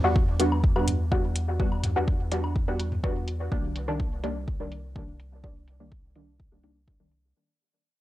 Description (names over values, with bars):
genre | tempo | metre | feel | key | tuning
dub techno | 125 BPM | 4/4 | straight | unclear | A4 = 438 Hz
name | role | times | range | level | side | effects
filtered dub chord stab | stabs | 0.0-7.2 s | Eb3 to F#4 | -29 LUFS | equal | chorus, phaser, sidechain pumping, dub echo
warm sub bass | bass | 0.0-7.3 s | C2 to E2 | -30 LUFS | equal | tube saturation, sidechain pumping
electronic kick drum | drums | 0.2-7.0 s | none | -26 LUFS | equal | none
electronic hi-hat | drums | 0.4-7.2 s | none | -35 LUFS | equal | low-pass filter on cymbals, low-pass filter on perc, low-pass filter on hats
electronic woodblock and toms | percussion | 0.5-3.0 s | none | -34 LUFS | left 1 dB | overdrive, sidechain pumping on perc, sidechain pumping on toms, dub echo
room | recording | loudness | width
light reverb | dry, gritty hardware recording, cassette tape | -24 LUFS | side -15 dB against mid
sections
0.0-7.4 A section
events
fade-out 0.0-7.4; filter sweep on synth stab 0.0-7.4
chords
0.0 Em7; 3.5 Cm7